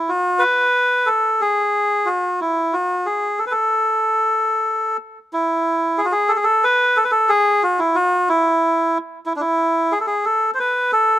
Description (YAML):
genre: persian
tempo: 61 BPM (dotted quarters)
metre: 6/8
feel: straight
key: A avaz esfahan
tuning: A4 = 440 Hz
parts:
  - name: melodica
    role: solo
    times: 0.0-11.2 s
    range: D4 to C5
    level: -16 LUFS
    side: equal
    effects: slapback echo
room: little or no reverb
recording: recorded outdoors, with no room sound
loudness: -16 LUFS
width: side -13 dB against mid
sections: 0.0-5.3 A section; 5.3-11.2 B section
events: none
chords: none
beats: 0.44 | 1.42 2.40 | 3.38 4.36 | 5.34 6.32 | 7.30 8.28 | 9.26 10.24